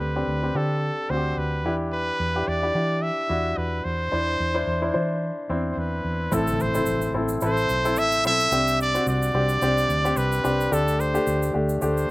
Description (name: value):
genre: piano-driven pop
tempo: 109 BPM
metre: 4/4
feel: swing 56% on 16ths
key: unclear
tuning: A4 = 440 Hz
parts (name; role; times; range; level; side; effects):
- bright trumpet; melody; 0.0-12.1 s; A4 to E5; -25 LUFS; equal; slapback echo
- warm grand piano; accompaniment; 0.0-12.1 s; A2 to C5; -25 LUFS; left 1 dB; none
- vintage muted fingered electric bass; bass; 0.0-12.0 s; A1 to E3; -27 LUFS; right 1 dB; none
- egg shaker; percussion; 6.3-12.1 s; none; -39 LUFS; right 5 dB; none
- impact; sound effects; 6.3-8.5 s; none; -33 LUFS; equal; none
room: little or no reverb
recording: recorded outdoors, with no room sound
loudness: -21 LUFS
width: side -20 dB against mid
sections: 0.0-6.3 A section; 6.3-12.1 B section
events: impact 6.3-8.5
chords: 0.0 D7sus4; 1.6 Em7; 4.1 Cadd9/E; 6.3 Am; 8.5 Csus2; 10.7 Dsus4